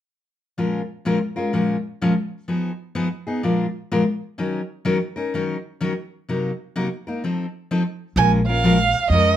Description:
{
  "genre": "acoustic string swing (jazz manouche)",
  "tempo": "126 BPM",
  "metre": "4/4",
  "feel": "swing 65% on 8ths",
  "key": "Bb minor",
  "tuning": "A4 = 443 Hz",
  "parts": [
    { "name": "picked steel-string acoustic guitar", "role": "accompaniment", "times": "0.6-9.3 s", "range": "Bb2 to Bb4", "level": "-21 LUFS", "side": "left 2 dB", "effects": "none" },
    { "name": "warm violin", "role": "melody", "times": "8.2-9.4 s", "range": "Eb5 to Ab5", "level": "-18 LUFS", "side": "right 6 dB", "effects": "none" },
    { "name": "upright bass", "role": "bass", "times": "8.2-9.4 s", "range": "Bb1 to F2", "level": "-20 LUFS", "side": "right 1 dB", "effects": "none" }
  ],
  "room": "moderate studio reverb, RT60 0.7 s",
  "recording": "none",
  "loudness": "-20 LUFS",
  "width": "side -11 dB against mid",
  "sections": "0.6-8.2 A section; 8.2-9.4 B section",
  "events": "none",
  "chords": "0.6 Bbm7; 2.5 Fm7b5; 3.4 Bb7; 4.4 Ebm7; 6.3 Cm7b5; 7.2 F7; 8.2 Bbm7"
}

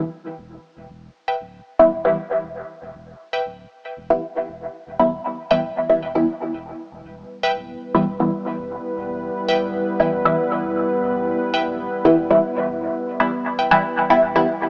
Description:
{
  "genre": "dub techno",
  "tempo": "117 BPM",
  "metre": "4/4",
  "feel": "straight",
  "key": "E minor",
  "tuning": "A4 = 440 Hz",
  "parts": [
    { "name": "filtered dub chord stab", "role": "stabs", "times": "0.0-14.5 s", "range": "E3 to E4", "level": "-17 LUFS", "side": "equal", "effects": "phaser, cassette tape, dub echo" },
    { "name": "warm sub bass", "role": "bass", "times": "0.0-14.4 s", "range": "D1 to E1", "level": "-41 LUFS", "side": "equal", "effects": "tube saturation" },
    { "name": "wavetable chord stab", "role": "riff", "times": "1.3-13.7 s", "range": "B4 to G5", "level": "-24 LUFS", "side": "equal", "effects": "dub echo" },
    { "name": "deep dark ambient pad", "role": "sustained chords", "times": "7.3-14.7 s", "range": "G3 to B4", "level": "-23 LUFS", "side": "equal", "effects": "chorus, built-in reverb" }
  ],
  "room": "moderate echo chamber reverb, RT60 1.9 s",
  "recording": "dry, gritty hardware recording, cassette tape, small speaker sound",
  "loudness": "-18 LUFS",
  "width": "side -38 dB against mid",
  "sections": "0.0-14.0 A section",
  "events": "filter sweep on synth stab 0.0-14.0",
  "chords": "0.0 Em"
}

